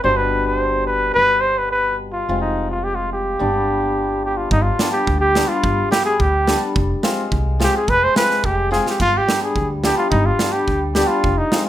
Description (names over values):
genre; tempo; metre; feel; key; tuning
klezmer; 107 BPM; 2/4; straight; G phrygian dominant; A4 = 441 Hz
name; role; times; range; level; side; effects
breathy cornet; melody; 0.0-11.7 s; Eb4 to C5; -18 LUFS; equal; none
hammered dulcimer; accompaniment; 0.0-11.7 s; B2 to F4; -23 LUFS; left 2 dB; none
upright bass; bass; 0.0-11.4 s; F1 to D2; -23 LUFS; equal; none
big rock drum kit; drums; 4.5-11.7 s; kick drum, snare drum, splash cymbal; -22 LUFS; right 2 dB; none
room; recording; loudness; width
moderate studio reverb, RT60 0.5 s; none; -16 LUFS; side -12 dB against mid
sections
0.0-4.5 A section; 4.5-11.7 A section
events
drum fill 8.7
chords
0.0 G; 2.3 Fm; 3.4 G; 6.8 Fm; 9.0 G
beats
| 0.04 0.60 | 1.16 1.72 | 2.28 2.84 | 3.40 3.96 | 4.52 5.08 | 5.64 6.20 | 6.76 7.32 | 7.88 8.44 | 9.00 9.56 | 10.12 10.68 | 11.24